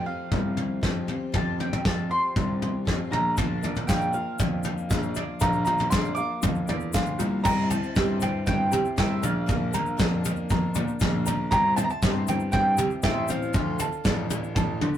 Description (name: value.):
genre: indie folk with a building arrangement.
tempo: 118 BPM.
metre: 4/4.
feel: straight.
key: unclear.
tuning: A4 = 441 Hz.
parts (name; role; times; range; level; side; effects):
mandolin; melody; 0.0-14.3 s; E5 to D6; -28 LUFS; right 1 dB; none.
fingerpicked steel-string acoustic guitar; accompaniment; 0.0-3.4 s; F2 to G4; -35 LUFS; left 3 dB; none.
picked twelve-string acoustic guitar; accompaniment; 0.0-15.0 s; Bb2 to C5; -34 LUFS; left 3 dB; none.
clear grand piano; bass; 0.0-14.9 s; A1 to D3; -29 LUFS; equal; none.
soft brush drum kit; drums; 0.3-14.9 s; crash cymbal, kick drum, snare drum, toms; -27 LUFS; equal; none.
ukulele; arpeggios; 3.4-15.0 s; F4 to Bb5; -33 LUFS; right 3 dB; none.
egg shaker; percussion; 3.4-15.0 s; none; -40 LUFS; left 5 dB; none.
room: light reverb.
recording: rough rehearsal-room recording, warm saturation.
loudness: -23 LUFS.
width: side -10 dB against mid.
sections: 0.0-7.4 A section; 7.4-15.0 B section.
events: none.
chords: 0.0 Fadd9; 3.1 Bb; 7.4 C; 9.2 Bb; 11.5 C; 13.5 Dm.